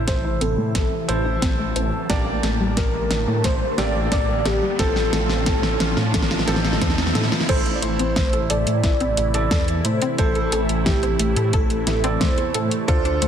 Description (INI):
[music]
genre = synthwave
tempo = 89 BPM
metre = 4/4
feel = straight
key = A phrygian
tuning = A4 = 440 Hz
[part]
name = warm velvety synth lead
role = melody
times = 0.0-13.3 s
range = G4 to D5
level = -27 LUFS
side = right 1 dB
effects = chorus, cassette tape, digital delay
[part]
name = FM electric piano with soft pad layer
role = second line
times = 0.0-13.3 s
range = G4 to D5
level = -32 LUFS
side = equal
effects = chorus, ping-pong delay
[part]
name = phased analog pad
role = sustained chords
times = 0.0-13.3 s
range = C3 to A5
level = -29 LUFS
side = equal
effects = phaser, chorus, sidechain pumping
[part]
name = clear baby grand piano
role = stabs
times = 0.0-13.3 s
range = Bb3 to A5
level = -29 LUFS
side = right 3 dB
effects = low-pass filter, ping-pong delay
[part]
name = dark detuned saw bass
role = bass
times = 0.0-13.3 s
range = A1 to A2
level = -24 LUFS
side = equal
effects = sidechain pumping
[part]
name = riser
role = sound effects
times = 0.5-7.5 s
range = none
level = -32 LUFS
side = right 2 dB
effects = none
[part]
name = wide unison pluck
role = arpeggios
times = 0.1-13.3 s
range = G3 to C5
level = -30 LUFS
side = left 3 dB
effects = ping-pong delay
[part]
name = electronic kick drum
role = drums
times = 0.1-13.0 s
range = none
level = -23 LUFS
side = equal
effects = small room ambience
[part]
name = pop drum kit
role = drums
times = 0.1-13.3 s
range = crash cymbal, hi-hat, snare drum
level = -25 LUFS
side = equal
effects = small room ambience
[sound]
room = moderate lush hall reverb, RT60 2.6 s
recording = dense, heavily limited modern master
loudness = -18 LUFS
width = side -8 dB against mid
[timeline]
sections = 0.0-7.5 A section; 7.5-13.3 B section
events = drum fill 0.0-7.5; filter sweep on analog synth pad 0.0-7.5; riser 0.5-7.5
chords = 0.0 Am; 2.1 Gmadd9/A; 4.8 F/A; 7.5 Am